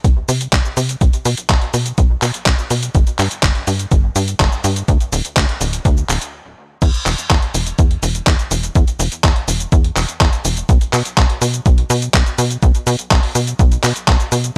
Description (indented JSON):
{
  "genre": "italo disco",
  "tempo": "124 BPM",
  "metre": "4/4",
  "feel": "straight",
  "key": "E minor",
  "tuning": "A4 = 440 Hz",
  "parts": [
    { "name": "tight sequencer bass", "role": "bass", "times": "0.0-14.5 s", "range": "D1 to C3", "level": "-21 LUFS", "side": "equal", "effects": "none" },
    { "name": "dusty soul sampler-style drum kit", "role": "drums", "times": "0.0-14.5 s", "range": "cabasa, crash cymbal, handclaps, hi-hat", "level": "-21 LUFS", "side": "equal", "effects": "none" },
    { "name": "electronic kick drum", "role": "drums", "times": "0.0-14.2 s", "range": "none", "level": "-16 LUFS", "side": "equal", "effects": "overdrive" }
  ],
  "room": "little or no reverb",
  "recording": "dry, gritty hardware recording, transformer saturation",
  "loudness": "-16 LUFS",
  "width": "mono",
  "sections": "0.0-6.8 A section; 6.8-14.6 B section",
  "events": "stop 6.3-6.8",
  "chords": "none",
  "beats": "0.04 0.53 | 1.01 1.50 1.98 2.46 | 2.95 3.43 3.92 4.40 | 4.88 5.37 5.85 6.33 | 6.82 7.30 7.79 8.27 | 8.75 9.24 9.72 10.21 | 10.69 11.17 11.66 12.14 | 12.62 13.11 13.59 14.08"
}